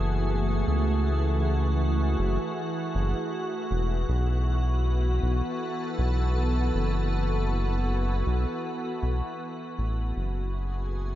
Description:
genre	ambient dub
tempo	79 BPM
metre	4/4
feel	swing 58% on 16ths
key	unclear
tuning	A4 = 440 Hz
part	soft additive organ-like pad	sustained chords	0.0-11.2 s	E3 to A4	-29 LUFS	equal	ensemble chorus, built-in reverb
part	round analog bass	bass	0.0-11.2 s	E1 to C#2	-25 LUFS	equal	none
room	little or no reverb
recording	nothing above 10.9 kHz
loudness	-25 LUFS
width	side -13 dB against mid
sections	0.0-11.2 A section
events	fade-out 8.1-11.2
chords	0.0 F#m9; 4.1 B7sus4; 10.2 F#m9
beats	0.29 | 1.05 1.81 2.57 3.33 | 4.09 4.85 5.61 6.37 | 7.13 7.89 8.65 9.41 | 10.16 10.93

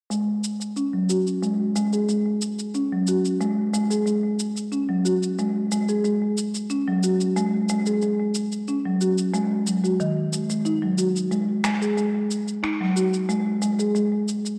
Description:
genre	organic downtempo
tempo	91 BPM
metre	4/4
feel	straight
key	unclear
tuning	A4 = 442 Hz
part	marimba with soft mallets	arpeggios	0.1-14.1 s	D#3 to G#4	-24 LUFS	equal	low-pass filter, delay
part	electronic cabasa and finger snaps	drums	0.1-14.6 s	none	-34 LUFS	equal	none
room	wet lush hall reverb, RT60 2.3 s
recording	worn, warbling old tape, cassette tape, warbly pitch drift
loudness	-24 LUFS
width	mono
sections	0.1-14.6 A section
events	filter sweep on marimba 0.1-14.6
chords	none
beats	| 0.11 0.77 1.43 2.08 | 2.74 3.40 4.06 4.72 | 5.38 6.04 6.70 7.36 | 8.02 8.68 9.34 10.00 | 10.66 11.32 11.97 12.63 | 13.29 13.95

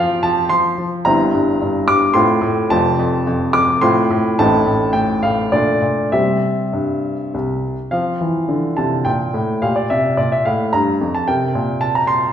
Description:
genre	classical-period piano sonatina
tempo	108 BPM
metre	3/4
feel	rubato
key	F major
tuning	A4 = 441 Hz
part	clear baby grand piano	solo	0.0-12.3 s	F1 to D6	-15 LUFS	equal	none
room	wet recital hall reverb, RT60 1.5 s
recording	heard from further back in the room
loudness	-15 LUFS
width	side -9 dB against mid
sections	0.0-7.9 A section; 7.9-12.3 A section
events	none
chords	0.0 F5; 1.1 C7/G; 2.2 F/A; 2.7 F; 3.8 F/A; 4.4 Am7b5; 5.5 Bbmaj7; 6.1 C; 7.9 F; 9.6 Gm7/Bb; 11.3 C5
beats	0.50 | 1.05 1.61 2.16 | 2.71 3.27 3.83 | 4.38 4.95 5.53 | 6.13 6.74 7.33 | 7.92 8.50 9.06 | 9.62 10.18 10.73 | 11.28 11.82

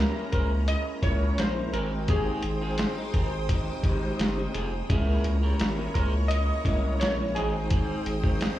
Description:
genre	indie pop, bedroom pop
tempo	85 BPM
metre	4/4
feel	straight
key	Ab major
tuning	A4 = 444 Hz
part	electric guitar at the edge of break-up	second line	0.0-8.6 s	Eb4 to Db5	-38 LUFS	right 2 dB	lush chorus, slapback echo, tape echo
part	electric guitar through a small old amp	accompaniment	0.0-8.6 s	Ab2 to Fb4	-35 LUFS	left 2 dB	ensemble chorus, vibrato effect, slapback echo
part	mellow tonewheel organ	accompaniment	0.0-8.5 s	Ab3 to G5	-34 LUFS	right 2 dB	chorus vibrato, stopped rotary speaker, cassette tape
part	string machine, full ensemble	sustained chords	0.0-8.6 s	Db4 to Eb6	-38 LUFS	equal	ensemble chorus
part	saturated sub bass	bass	0.0-8.5 s	F1 to Db2	-28 LUFS	equal	none
part	warm analog keys	melody	0.3-8.6 s	Ab4 to Eb5	-32 LUFS	equal	wide subtle chorus, slapback echo, tape echo
part	lo-fi sampler-style drum kit	drums	0.3-8.6 s	hi-hat, kick drum, snare drum	-27 LUFS	equal	none
room	little or no reverb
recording	live gig heard through the venue's PA, club reverb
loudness	-24 LUFS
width	side -14 dB against mid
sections	0.0-8.6 A section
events	none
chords	0.0 Dbm6; 1.7 Abmaj7; 4.9 Dbm6; 7.4 Abmaj7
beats	0.69 1.39 | 2.09 2.79 3.50 4.20 | 4.90 5.61 6.31 7.01 | 7.71 8.42

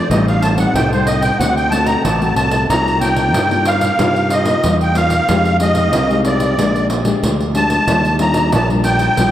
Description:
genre	samba and choro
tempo	93 BPM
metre	4/4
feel	straight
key	unclear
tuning	A4 = 440 Hz
part	musette accordion	melody	0.0-9.3 s	C5 to Bb5	-16 LUFS	equal	none
part	nylon-string guitar	accompaniment	0.0-9.3 s	A2 to G4	-19 LUFS	left 2 dB	none
part	growling fingered electric bass	bass	0.1-9.3 s	A1 to G2	-18 LUFS	equal	overdrive
part	pandeiro	percussion	0.1-9.3 s	none	-21 LUFS	right 1 dB	none
room	wet cathedral reverb, RT60 5.0 s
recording	in a vast, echoing space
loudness	-12 LUFS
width	side -12 dB against mid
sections	0.0-2.7 A section; 2.7-9.3 B section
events	accordion solo 0.0-2.7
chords	0.1 Am7b5; 1.4 D7; 2.7 Cm7; 5.3 Fm9; 6.6 Bb6; 7.9 Ebmaj9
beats	| 0.11 0.75 1.40 2.05 | 2.70 3.35 3.99 4.64 | 5.29 5.93 6.58 7.23 | 7.88 8.53 9.17

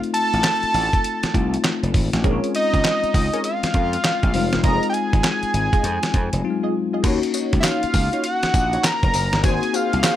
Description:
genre	R&B, new jack swing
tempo	100 BPM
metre	4/4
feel	swing 64% on 16ths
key	unclear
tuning	A4 = 441 Hz
part	bell-like tine electric piano	accompaniment	0.0-10.2 s	Gb3 to Gb4	-25 LUFS	left 6 dB	none
part	dusty soul sampler-style drum kit	drums	0.0-10.2 s	crash cymbal, handclaps, hi-hat, kick drum, snare drum, tambourine	-21 LUFS	right 1 dB	none
part	fat analog lead	melody	0.1-10.2 s	Eb5 to Bb5	-22 LUFS	equal	none
part	gritty slap bass	bass	0.3-10.0 s	E1 to F2	-23 LUFS	right 1 dB	overdrive
part	funky polysynth comp	stabs	2.2-10.2 s	Eb4 to Eb5	-29 LUFS	right 1 dB	chorus
room	digital ambience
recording	none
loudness	-18 LUFS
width	side -12 dB against mid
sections	0.0-7.0 A section; 7.0-10.2 B section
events	none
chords	0.0 F7; 2.2 Bbm7; 4.3 Fm7; 7.0 Ebm7; 9.4 Ab7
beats	0.44 1.04 1.64 | 2.24 2.84 3.44 4.04 | 4.64 5.24 5.84 6.44 | 7.04 7.64 8.24 8.84 | 9.44 10.04

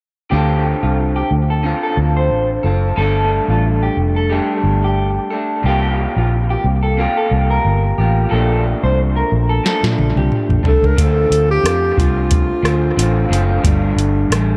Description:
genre	indie pop, bedroom pop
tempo	90 BPM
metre	4/4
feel	swing 55% on 16ths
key	D minor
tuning	A4 = 440 Hz
part	electric guitar through a small old amp	second line	0.3-10.5 s	F4 to C5	-24 LUFS	equal	subtle chorus, dub echo
part	electric guitar through a small old amp	accompaniment	0.3-14.6 s	G2 to A4	-22 LUFS	equal	subtle chorus, warbly pitch drift, dub echo
part	vintage muted fingered electric bass	bass	0.3-14.6 s	F1 to Bb2	-19 LUFS	equal	none
part	soft vintage rhythm box	drums	9.7-14.5 s	hi-hat, kick drum, rim click, snare drum, toms	-20 LUFS	equal	overdrive, dub echo
part	mellow clarinet	melody	10.7-13.3 s	F4 to Bb4	-20 LUFS	equal	lush chorus, dub echo
room	light reverb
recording	echo-heavy mix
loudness	-16 LUFS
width	mono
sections	0.3-11.0 A section; 11.0-14.6 B section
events	drum fill 9.6-11.0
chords	0.3 Dm7; 3.0 Gsus2; 5.6 C7sus4; 8.3 Bbmaj7; 11.0 Dm7; 13.6 Gsus2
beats	| 0.32 0.98 1.65 2.31 | 2.98 3.65 4.32 4.98 | 5.65 6.32 6.98 7.65 | 8.31 8.98 9.65 10.31 | 10.98 11.65 12.31 12.98 | 13.65 14.31

